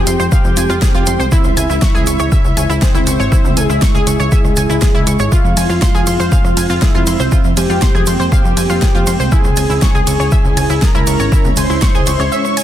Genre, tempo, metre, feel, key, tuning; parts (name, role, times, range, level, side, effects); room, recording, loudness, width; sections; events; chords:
melodic techno; 120 BPM; 4/4; straight; A4 = 440 Hz
wide unison lead; melody; 0.0-12.6 s; Ab3 to Db5; -20 LUFS; equal; cassette tape, sidechain pumping, digital delay
airy dreamy lead; second line; 0.0-12.6 s; Ab4 to Db6; -24 LUFS; equal; chorus, sidechain pumping, digital delay
dark analog pad; sustained chords; 0.0-12.6 s; F3 to Fb4; -25 LUFS; equal; chorus, sidechain pumping
plucky analog bass; bass; 0.0-12.3 s; Ab1 to F2; -17 LUFS; equal; tube saturation, sidechain pumping
granular cloud pad; texture; 0.0-12.6 s; C4 to Fb5; -25 LUFS; right 3 dB; built-in reverb, sidechain pumping
analog pluck; arpeggios; 0.1-12.6 s; Fb4 to Ab6; -21 LUFS; equal; chorus, vintage 12-bit sampler grit, sidechain pumping, digital delay
deep house drum kit; drums; 0.1-12.6 s; hi-hat, ride cymbal, rim click, snare drum, toms; -22 LUFS; right 1 dB; overdrive
tube shaker; percussion; 0.1-12.6 s; -27 LUFS; right 5 dB
electronic kick drum; drums; 0.3-11.9 s; -14 LUFS; equal
little or no reverb; dense, heavily limited modern master; -10 LUFS; side -11 dB against mid
0.0-12.6 A section
0.0 Fm; 1.3 Dbm; 5.3 Fm; 9.3 Dbm